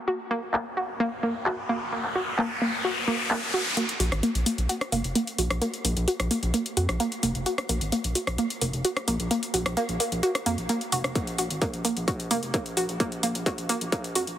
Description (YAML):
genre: driving peak-time techno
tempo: 130 BPM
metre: 4/4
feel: straight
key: unclear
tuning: A4 = 440 Hz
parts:
  - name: analog pluck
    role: riff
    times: 0.1-14.2 s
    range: Bb3 to Gb4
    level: -28 LUFS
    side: right 1 dB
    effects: chorus, tube saturation, sidechain pumping, dub echo
  - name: techno drum kit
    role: drums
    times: 0.1-14.4 s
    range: handclaps, hi-hat, rim click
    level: -30 LUFS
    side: left 1 dB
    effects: low-pass filter on snare, sidechain pumping on hats, low-pass filter on hats
  - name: riser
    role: sound effects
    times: 0.9-3.8 s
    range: none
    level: -31 LUFS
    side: left 1 dB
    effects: none
  - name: gritty driven synth bass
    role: bass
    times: 4.0-14.4 s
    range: F1 to F2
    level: -29 LUFS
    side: equal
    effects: sidechain pumping
  - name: electronic kick drum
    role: drums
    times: 11.2-14.0 s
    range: none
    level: -29 LUFS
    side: equal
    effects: distortion
room: moderate huge ambient reverb, RT60 4.0 s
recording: heavily compressed radio sound, high-pass filter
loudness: -24 LUFS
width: side -11 dB against mid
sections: 0.0-3.8 A section; 3.8-14.4 B section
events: filter sweep on synth arpeggio sound 0.0-3.8, 3.8-14.4; riser 0.9-3.8; build-up 3.8-14.4; drum fill 11.2-14.4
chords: 0.0 Gb/Bb; 3.8 Bb5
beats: | 0.08 0.54 1.00 1.46 | 1.92 2.38 2.85 3.31 | 3.77 4.23 4.69 5.15 | 5.62 6.08 6.54 7.00 | 7.46 7.92 8.38 8.85 | 9.31 9.77 10.23 10.69 | 11.15 11.62 12.08 12.54 | 13.00 13.46 13.92